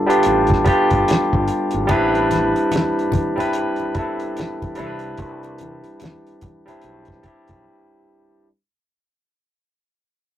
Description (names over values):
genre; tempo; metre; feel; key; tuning
R&B, neo-soul; 73 BPM; 4/4; swing 60% on 16ths; unclear; A4 = 442 Hz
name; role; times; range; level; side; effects
barky tine electric piano; accompaniment; 0.0-8.5 s; G3 to C5; -18 LUFS; equal; overdrive
cloth-damped thuddy drum kit; drums; 0.1-7.6 s; hi-hat, kick drum, snare drum; -21 LUFS; equal; none
fretless electric bass; bass; 0.3-7.6 s; G1 to C2; -27 LUFS; equal; none
congas; percussion; 1.9-7.1 s; none; -31 LUFS; left 3 dB; none
room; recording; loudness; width
moderate booth ambience, RT60 0.2 s; rough rehearsal-room recording, tube saturation; -16 LUFS; side -12 dB against mid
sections
0.0-8.5 A section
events
fade-out 0.0-8.5; break 7.6-8.5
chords
0.0 G9; 1.9 Am11; 4.8 Cmaj7